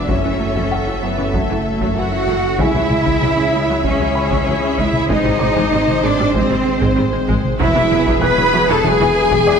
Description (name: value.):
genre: cinematic, hybrid orchestral and electronic film score.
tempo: 96 BPM.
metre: 4/4.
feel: straight.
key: C# phrygian.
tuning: A4 = 440 Hz.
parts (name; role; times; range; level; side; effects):
warm symphonic violin section; melody; 0.0-9.6 s; B4 to E5; -25 LUFS; left 5 dB; none.
warm symphonic violin section; second line; 0.0-9.6 s; A4 to B5; -24 LUFS; left 3 dB; none.
clear symphonic viola section; accompaniment; 0.0-9.6 s; E3 to A4; -24 LUFS; right 2 dB; none.
chorused pulse-width pad; sustained chords; 0.0-9.6 s; F#3 to E5; -26 LUFS; equal; none.
mellow French horn section; sustained chords; 0.0-9.6 s; A3 to B4; -22 LUFS; left 3 dB; none.
rich symphonic cello section; bass; 0.0-9.6 s; A3 to B4; -20 LUFS; right 3 dB; none.
swelling detuned saw bass; bass; 0.0-9.6 s; E1 to C#2; -26 LUFS; equal; none.
felt-muted upright piano; texture; 0.0-9.6 s; G#4 to F#6; -28 LUFS; left 2 dB; digital delay.
mallet-like synth pluck; arpeggios; 0.1-9.6 s; C#3 to G#4; -27 LUFS; equal; none.
rich symphonic double bass section; bass; 0.1-9.5 s; E1 to F#2; -24 LUFS; right 4 dB; none.
taiko ensemble; drums; 0.1-9.6 s; none; -23 LUFS; equal; none.
room: wet concert hall reverb, RT60 2.0 s.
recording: none.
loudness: -14 LUFS.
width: side -6 dB against mid.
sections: 0.0-9.6 A section.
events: none.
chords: 0.1 F#m7; 2.6 C#m; 5.1 G#; 7.6 Eadd9.